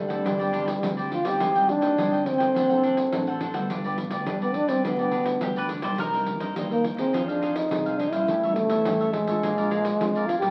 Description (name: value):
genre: samba and choro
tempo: 105 BPM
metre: 4/4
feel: straight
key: unclear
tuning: A4 = 440 Hz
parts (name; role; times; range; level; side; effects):
- breathy trombone; melody; 0.0-10.5 s; G3 to G4; -26 LUFS; equal; none
- cavaquinho; accompaniment; 0.0-10.5 s; D4 to G5; -35 LUFS; equal; none
- nylon-string guitar; accompaniment; 0.0-10.5 s; G2 to A4; -34 LUFS; equal; none
- sustaining fretless electric bass; bass; 0.0-10.5 s; F#1 to G2; -39 LUFS; equal; none
- pandeiro; percussion; 0.1-10.5 s; none; -36 LUFS; equal; none
- bowl-back mandolin; second line; 5.4-6.4 s; G4 to C5; -32 LUFS; equal; none
room: moderate large studio reverb, RT60 1.2 s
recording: very old 78 rpm record, vinyl crackle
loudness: -25 LUFS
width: mono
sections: 0.0-10.5 A section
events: none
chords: 0.3 Gsus4; 1.4 Abmaj7; 2.6 D7/F#; 3.7 G; 6.0 Cm7; 7.1 Fm7; 8.3 A7; 9.4 Bb7